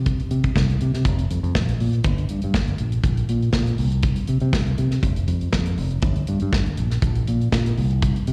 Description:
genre	disco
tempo	121 BPM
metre	4/4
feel	straight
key	unclear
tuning	A4 = 440 Hz
part	fingered electric bass	bass	0.0-8.3 s	F1 to C3	-23 LUFS	equal	none
part	modern studio drum kit	drums	0.1-8.3 s	hi-hat, kick drum, snare drum	-26 LUFS	equal	none
room	little or no reverb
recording	live gig heard through the venue's PA, recital hall reverb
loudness	-22 LUFS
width	mono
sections	0.0-2.0 A section; 2.0-8.3 B section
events	none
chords	none

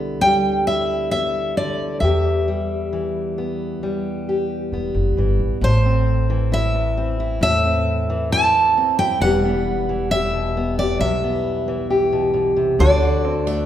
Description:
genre	acoustic folk duo or small band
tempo	67 BPM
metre	4/4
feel	straight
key	E minor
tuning	A4 = 439 Hz
part	picked steel-string acoustic guitar	melody	0.0-13.7 s	C5 to B5	-20 LUFS	equal	none
part	fingerpicked steel-string acoustic guitar	accompaniment	0.0-13.7 s	E2 to G4	-22 LUFS	left 1 dB	none
part	upright bass	bass	0.0-13.7 s	E1 to E2	-22 LUFS	equal	none
part	open-back banjo	arpeggios	12.8-13.7 s	D3 to F#4	-25 LUFS	right 3 dB	none
room	wet recital hall reverb, RT60 1.4 s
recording	recorded in a church or concert hall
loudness	-17 LUFS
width	side -11 dB against mid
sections	0.0-5.6 A section; 5.6-13.7 B section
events	none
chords	0.0 G6/B; 2.0 Em; 5.6 Am; 9.2 Em; 12.8 D

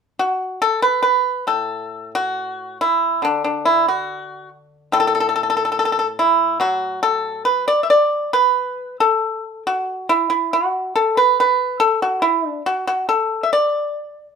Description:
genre	chinese traditional, Chinese solo plucked strings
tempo	70 BPM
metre	2/4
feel	uneven beats, rubato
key	unclear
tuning	A4 = 443 Hz
part	pipa	solo	0.2-14.4 s	A2 to E5	-16 LUFS	equal	none
room	light reverb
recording	band playing live in one room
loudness	-16 LUFS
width	side -6 dB against mid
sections	0.0-1.5 A section; 1.5-14.4 B section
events	none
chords	none

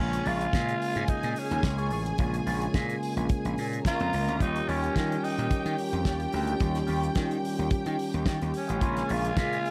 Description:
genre	disco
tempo	109 BPM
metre	4/4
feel	straight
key	Bb dorian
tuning	A4 = 440 Hz
part	breathy tenor saxophone	melody	0.0-9.7 s	Db4 to F4	-34 LUFS	equal	none
part	warm studio string section	second line	0.0-9.7 s	G4 to Bb5	-38 LUFS	equal	none
part	electric guitar with an envelope filter	accompaniment	0.0-9.5 s	F4 to Eb5	-42 LUFS	equal	wah
part	tine electric piano	accompaniment	0.0-9.7 s	Db3 to G4	-36 LUFS	equal	analog chorus
part	mellow French horn section	sustained chords	0.0-9.7 s	Eb3 to Ab4	-39 LUFS	equal	none
part	gritty slap bass	bass	0.0-9.6 s	A1 to Eb3	-33 LUFS	equal	overdrive
part	damped 70s drum kit	drums	0.1-9.7 s	hi-hat, kick drum, snare drum	-33 LUFS	equal	none
room	moderate large studio reverb, RT60 1.2 s, studio reverb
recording	none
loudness	-28 LUFS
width	mono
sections	0.0-9.7 A section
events	none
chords	0.0 Bbm7; 4.4 Eb9; 8.8 Bbm7

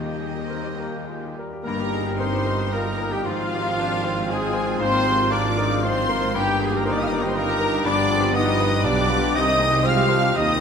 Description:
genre	classical, romantic movement for piano and orchestra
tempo	101-124 BPM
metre	3/4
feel	rubato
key	Eb major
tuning	A4 = 440 Hz
part	clear concert grand piano	melody	0.0-10.6 s	C2 to C5	-27 LUFS	left 3 dB	none
part	rich studio violin section	melody	0.0-10.6 s	Eb5 to F6	-30 LUFS	left 3 dB	none
part	clear clarinet	second line	0.0-10.6 s	Eb4 to F5	-33 LUFS	left 1 dB	none
part	clear oboe	second line	0.0-10.6 s	F4 to G5	-32 LUFS	right 2 dB	none
part	rich studio violin section	second line	0.0-10.6 s	Eb4 to F5	-32 LUFS	equal	none
part	silver concert flute	second line	0.0-10.6 s	Eb5 to F6	-32 LUFS	left 2 dB	none
part	rich studio viola section	accompaniment	0.0-10.6 s	G3 to G4	-31 LUFS	equal	none
part	mellow French horn section	sustained chords	0.0-10.6 s	F3 to G4	-29 LUFS	left 6 dB	none
part	mellow tuba	bass	0.0-10.6 s	G1 to Eb2	-33 LUFS	right 5 dB	none
part	rich studio cello section	bass	0.0-10.6 s	Eb2 to Eb3	-30 LUFS	right 4 dB	none
part	rich studio double bass section	bass	0.0-10.6 s	G1 to Eb2	-32 LUFS	right 4 dB	none
part	timpani	percussion	0.0-0.7 s	Eb3	-40 LUFS	left 4 dB	none
part	clear bassoon	accompaniment	0.5-10.6 s	G3 to G4	-32 LUFS	right 2 dB	none
part	dark trumpet section	stabs	1.6-10.6 s	F4 to F5	-28 LUFS	equal	none
part	bright trombone section	sustained chords	1.7-10.6 s	Eb3 to Eb4	-35 LUFS	right 5 dB	none
room	moderate concert hall reverb, RT60 2.3 s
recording	none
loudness	-19 LUFS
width	side -6 dB against mid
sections	0.0-1.6 A section; 1.6-10.6 A section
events	none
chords	0.0 Eb; 1.6 Eb/G; 3.3 Fm/Ab; 4.8 Bb7/Ab; 6.4 Eb/G; 7.9 G7; 9.4 Cm

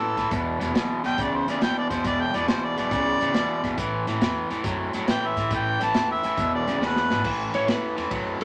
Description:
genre	electric blues shuffle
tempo	138 BPM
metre	4/4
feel	swing 68% on 8ths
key	A mixolydian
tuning	A4 = 439 Hz
part	warm harmonica	melody	0.0-7.3 s	A4 to A5	-28 LUFS	equal	overdrive
part	crunchy overdriven guitar	riff	0.0-8.4 s	E2 to F#3	-28 LUFS	equal	none
part	upright bass	bass	0.0-8.4 s	E1 to A2	-37 LUFS	equal	none
part	crunchy breakbeat drum kit	drums	0.2-8.4 s	crash cymbal, hi-hat, kick drum, ride cymbal, snare drum	-31 LUFS	equal	none
part	electric slide guitar	second line	7.5-8.4 s	B4 to C#5	-30 LUFS	equal	none
room	moderate studio reverb, RT60 0.8 s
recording	none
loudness	-25 LUFS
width	mono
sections	0.0-7.2 A section; 7.2-8.4 A section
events	harmonica solo 0.0-7.2; drum fill 6.8-7.2; electric slide guitar solo 7.2-8.4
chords	0.3 E5; 3.8 A5; 6.4 E; 7.2 Asus2

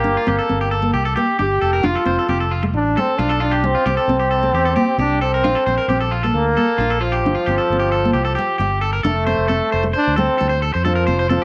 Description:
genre	highlife guitar band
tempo	133 BPM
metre	4/4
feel	straight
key	F major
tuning	A4 = 440 Hz
part	brilliant trombone	melody	0.0-11.4 s	F3 to G4	-22 LUFS	equal	none
part	nylon-string guitar	accompaniment	0.0-11.4 s	A3 to D4	-26 LUFS	equal	none
part	electric guitar at the edge of break-up	arpeggios	0.0-11.4 s	F4 to C5	-24 LUFS	equal	slapback echo
part	fingered electric bass	bass	0.0-11.4 s	F1 to F2	-24 LUFS	equal	none
room	moderate echo chamber reverb, RT60 2.0 s, small room ambience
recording	none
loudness	-18 LUFS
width	mono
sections	0.0-9.0 A section; 9.0-11.4 B section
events	none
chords	0.1 Gm7; 1.8 F; 3.6 C5; 5.4 Bbmaj7; 7.2 Gm7; 9.0 F

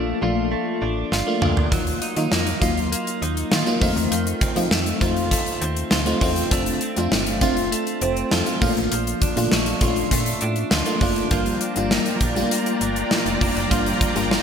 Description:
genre	1980s-style pop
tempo	100 BPM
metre	4/4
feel	straight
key	Bb major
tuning	A4 = 440 Hz
part	FM electric piano with soft pad layer	accompaniment	0.0-14.4 s	F3 to C5	-23 LUFS	left 2 dB	chorus, phaser
part	direct-recorded clean electric guitar	riff	0.0-14.4 s	Eb3 to F4	-27 LUFS	right 4 dB	lush chorus, digital delay
part	slap-like FM bass	bass	0.0-14.4 s	F1 to F3	-27 LUFS	equal	none
part	gated 80s drum kit	drums	1.1-14.4 s	hi-hat, kick drum, snare drum, toms	-22 LUFS	equal	gated reverb
part	string machine, violas	sustained chords	11.3-14.4 s	F4 to Bb5	-26 LUFS	equal	ensemble chorus
room	wet lush hall reverb, RT60 2.3 s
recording	bright 1980s-style digital production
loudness	-19 LUFS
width	side -7 dB against mid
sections	0.0-11.3 A section; 11.3-14.4 B section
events	drum fill 1.1-1.7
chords	0.0 Bbmaj7; 1.7 Ebmadd9; 3.8 F7; 6.5 Dm7/F; 8.6 Bbmaj7; 11.3 Gm7

